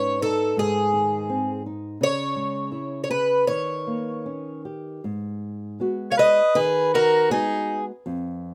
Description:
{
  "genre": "fado-style ballad",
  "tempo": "75-84 BPM",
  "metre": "4/4",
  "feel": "rubato",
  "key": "G# dorian from 5.0 s",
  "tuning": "A4 = 439 Hz",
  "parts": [
    { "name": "picked twelve-string acoustic guitar", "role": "melody", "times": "0.0-7.8 s", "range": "G#4 to E#5", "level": "-23 LUFS", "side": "equal", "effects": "none" },
    { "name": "flamenco guitar", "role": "accompaniment", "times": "0.0-8.5 s", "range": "F2 to G#4", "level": "-32 LUFS", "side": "equal", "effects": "none" },
    { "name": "clear soprano saxophone", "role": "second line", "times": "6.1-7.8 s", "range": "D#4 to C#5", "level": "-29 LUFS", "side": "equal", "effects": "none" }
  ],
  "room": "light reverb",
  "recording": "rough home demo mix",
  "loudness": "-23 LUFS",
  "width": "mono",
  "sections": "0.0-5.0 A section; 5.0-8.5 B section",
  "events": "none",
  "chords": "0.0 G#sus4; 0.6 G#; 2.0 C#m; 3.5 D#7; 5.0 G#m7"
}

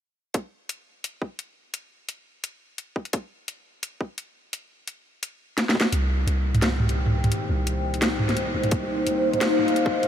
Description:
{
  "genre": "half-time drum and bass",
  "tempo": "172 BPM",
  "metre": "4/4",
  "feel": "swing 54% on 16ths, half-time",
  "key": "C minor",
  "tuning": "A4 = 442 Hz",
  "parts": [
    { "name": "drum and bass drum kit", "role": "drums", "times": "0.3-10.1 s", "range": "hi-hat, snare drum, toms", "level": "-25 LUFS", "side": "equal", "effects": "overdrive" },
    { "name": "electronic kick drum", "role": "drums", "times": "0.3-5.8, 8.7-9.9 s", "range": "none", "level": "-26 LUFS", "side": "equal", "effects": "overdrive, high-pass filter on kick" },
    { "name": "dark analog pad", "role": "sustained chords", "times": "6.8-10.1 s", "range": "Bb3 to G5", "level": "-24 LUFS", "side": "left 1 dB", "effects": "chorus, phaser, sidechain pumping" },
    { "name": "long sustained 808-style bass", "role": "bass", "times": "5.9-10.1 s", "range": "C2", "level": "-26 LUFS", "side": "equal", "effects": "none" }
  ],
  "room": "moderate huge ambient reverb, RT60 9.5 s",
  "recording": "dreamy mix soaked in reverb, high-pass filter",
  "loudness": "-22 LUFS",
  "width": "side -9 dB against mid",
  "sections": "0.3-5.9 A section; 5.9-10.1 B section",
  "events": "drum fill 5.6-5.9; build-up 5.9-10.1",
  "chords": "0.3 N.C.; 5.9 Cm7"
}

